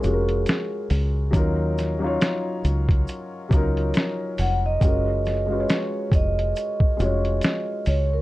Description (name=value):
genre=lo-fi hip hop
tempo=69 BPM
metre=4/4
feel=swing 57% on 16ths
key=F# major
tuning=A4 = 440 Hz
part: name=vibraphone with soft mallets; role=melody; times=0.0-8.2 s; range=A#4 to F#5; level=-27 LUFS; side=right 2 dB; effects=low-pass filter
part: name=felt-muted upright piano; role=accompaniment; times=0.0-8.2 s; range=F#3 to C#5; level=-27 LUFS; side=left 2 dB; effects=low-pass filter, plate reverb
part: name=deep dub fingered electric bass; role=bass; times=0.0-8.2 s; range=E#1 to D#2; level=-23 LUFS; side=equal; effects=none
part: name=lo-fi sampler-style drum kit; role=drums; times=0.0-8.1 s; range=hi-hat, kick drum, snare drum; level=-22 LUFS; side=equal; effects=none
part: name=tube shaker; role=percussion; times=0.0-8.1 s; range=none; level=-49 LUFS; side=right 4 dB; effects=none
room=light reverb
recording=cassette tape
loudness=-20 LUFS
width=side -17 dB against mid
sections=0.0-8.2 A section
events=none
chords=0.0 F#maj9; 1.3 D#m9; 4.8 F#maj9